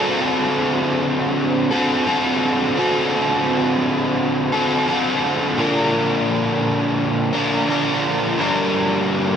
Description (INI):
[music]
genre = rock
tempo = 86 BPM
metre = 4/4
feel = straight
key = unclear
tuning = A4 = 442 Hz
[part]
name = overdriven electric guitar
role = solo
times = 0.0-9.4 s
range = G2 to Bb4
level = -17 LUFS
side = equal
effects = lush chorus, analog delay
[sound]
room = wet huge ambient reverb, RT60 4.0 s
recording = dreamy mix soaked in reverb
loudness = -17 LUFS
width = side -8 dB against mid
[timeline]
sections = 0.0-9.4 A section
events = none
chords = 0.0 D7; 5.6 Bb; 8.4 Gm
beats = 0.66 1.37 2.07 | 2.77 3.47 4.17 4.88 | 5.58 6.28 6.98 7.68 | 8.38 9.09